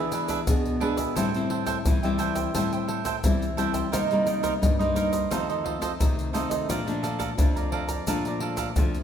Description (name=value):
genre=samba and choro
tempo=87 BPM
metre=4/4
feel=straight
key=unclear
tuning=A4 = 440 Hz
part: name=cavaquinho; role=accompaniment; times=0.0-8.7 s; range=D4 to Bb5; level=-29 LUFS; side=right 7 dB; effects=none
part: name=nylon-string guitar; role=accompaniment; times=0.0-9.0 s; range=F2 to G#4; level=-27 LUFS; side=left 2 dB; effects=none
part: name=egg shaker, pandeiro and surdo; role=percussion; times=0.1-9.0 s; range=none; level=-27 LUFS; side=left 1 dB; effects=none
room=wet recital hall reverb, RT60 1.4 s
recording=recorded in a church or concert hall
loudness=-23 LUFS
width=side -8 dB against mid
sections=0.0-9.0 A section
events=none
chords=0.0 E7; 1.2 Am7; 3.9 Cm7; 5.3 F7; 6.7 Bbmaj7